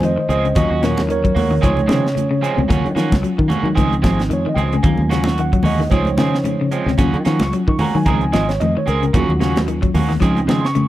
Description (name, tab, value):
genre	afrobeat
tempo	112 BPM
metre	4/4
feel	swing 56% on 16ths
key	Eb dorian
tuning	A4 = 440 Hz
part	mellow tine electric piano	accompaniment	0.0-10.9 s	C3 to Db6	-21 LUFS	right 2 dB	medium stereo tremolo
part	electric guitar at the edge of break-up	arpeggios	0.0-10.8 s	Bb2 to Gb3	-23 LUFS	left 6 dB	none
part	fingered electric bass	bass	0.0-10.9 s	Ab1 to Eb3	-20 LUFS	equal	none
part	tight funk drum kit	drums	0.0-10.9 s	hi-hat, kick drum, snare drum	-20 LUFS	equal	none
part	congas	percussion	0.0-10.9 s	none	-23 LUFS	right 1 dB	none
part	electric guitar at the edge of break-up	stabs	0.3-10.7 s	F3 to Ab4	-24 LUFS	right 5 dB	harmonic tremolo, tape echo
room	small room ambience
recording	dry, close 1970s-style studio recording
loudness	-14 LUFS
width	side -14 dB against mid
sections	0.0-10.9 A section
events	tine electric piano solo 0.0-10.9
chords	0.0 Dbmaj7; 0.6 Ebm7; 1.6 Dbmaj7; 2.7 Ebm7; 3.8 Dbmaj7; 4.8 Ebm7; 5.9 Dbmaj7; 7.0 Ebm7; 8.1 Dbmaj7; 9.1 Ebm7; 10.2 Dbmaj7